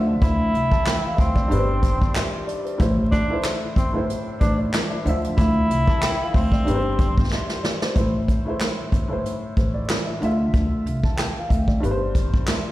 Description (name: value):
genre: hip hop, boom-bap hip-hop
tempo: 93 BPM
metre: 4/4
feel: swing 54% on 16ths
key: A minor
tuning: A4 = 440 Hz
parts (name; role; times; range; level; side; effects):
- dark upright piano; accompaniment; 0.0-12.7 s; G2 to A5; -27 LUFS; left 1 dB; cassette tape, high-pass filter, low-pass filter
- upright bass; bass; 0.0-12.5 s; G1 to D2; -23 LUFS; equal; none
- breathy tenor saxophone; melody; 0.2-7.5 s; C4 to E4; -27 LUFS; equal; high-pass filter, low-pass filter, ping-pong delay
- jazz brush drum kit; drums; 0.2-12.6 s; handclaps, hi-hat, kick drum, snare drum; -22 LUFS; equal; none
- finger snap; percussion; 0.9-7.5 s; none; -39 LUFS; left 2 dB; none
room: studio reverb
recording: played on a big sound system in a bare room, stone room reverb, vinyl crackle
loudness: -19 LUFS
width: side -16 dB against mid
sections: 0.0-8.0 A section; 8.0-12.7 B section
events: break 0.0; drum fill 7.3-8.0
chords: 0.0 Dmadd9; 1.5 Gsus4; 2.8 Am; 5.1 Dmadd9; 6.7 Gsus4; 8.0 Am; 10.2 Dmadd9; 11.8 Gsus4